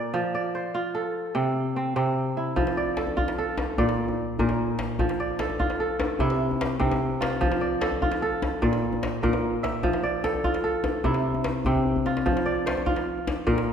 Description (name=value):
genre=west african traditional, West African string and xylophone music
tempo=99 BPM (dotted quarters)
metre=12/8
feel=straight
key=F major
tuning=A4 = 440 Hz
part: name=kora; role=arpeggios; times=0.0-13.7 s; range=Bb2 to E5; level=-24 LUFS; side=right 1 dB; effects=none
part: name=djembe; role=percussion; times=2.6-13.7 s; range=none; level=-29 LUFS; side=left 2 dB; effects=none
room=wet scoring stage reverb, RT60 1.8 s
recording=recorded in a church or concert hall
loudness=-23 LUFS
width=side -8 dB against mid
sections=0.0-2.6 A section; 2.6-12.3 A section; 12.3-13.7 B section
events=drum fill 11.8-12.3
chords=0.1 F; 1.4 C; 2.6 F; 3.8 Bb; 5.0 F; 6.2 C; 7.4 F; 8.6 Bb; 9.8 F; 11.0 C; 12.3 F5